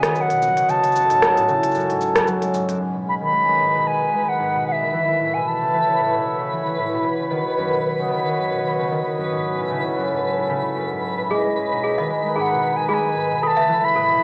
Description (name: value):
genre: folktronica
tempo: 113 BPM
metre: 4/4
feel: swing 56% on 16ths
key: unclear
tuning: A4 = 440 Hz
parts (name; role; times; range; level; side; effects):
- mellow wooden flute; melody; 0.0-6.5, 11.3-14.2 s; D#5 to B5; -22 LUFS; equal; cassette tape
- mellow accordion; sustained chords; 0.0-14.2 s; F#3 to D#5; -28 LUFS; equal; cassette tape
- concert harp; arpeggios; 0.0-14.2 s; F#2 to G#3; -29 LUFS; equal; low-pass filter, cassette tape, tape echo
- organic electronic drum kit; drums; 0.0-14.1 s; cabasa, hi-hat, rim click; -24 LUFS; equal; overdrive, low-pass filter on hats, low-pass filter on perc, low-pass filter on snare, low-pass filter on room
- round analog bass; bass; 0.4-0.5 s; D#1; -38 LUFS; equal; none
- twinkling granular texture; texture; 3.6-14.2 s; B4 to B5; -29 LUFS; equal; built-in reverb, cassette tape
- toy piano; second line; 11.3-14.0 s; G#4 to E5; -27 LUFS; equal; cassette tape
room: wet studio reverb, RT60 0.6 s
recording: home recording on cassette, small speaker sound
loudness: -21 LUFS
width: mono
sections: 0.0-2.8 A section; 2.8-14.2 B section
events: filter sweep on harp 2.8-14.2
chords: 0.0 Badd9; 0.7 F#madd9; 2.8 G#m; 4.9 Aadd9; 7.1 Badd9; 9.2 F#madd9; 11.3 G#m; 13.4 Aadd9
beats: 0.15 | 0.68 1.21 1.74 2.27 | 2.80 3.33 3.87 4.40 | 4.93 5.46 5.99 6.52 | 7.05 7.58 8.11 8.64 | 9.18 9.71 10.24 10.77 | 11.30 11.83 12.36 12.89 | 13.42 13.95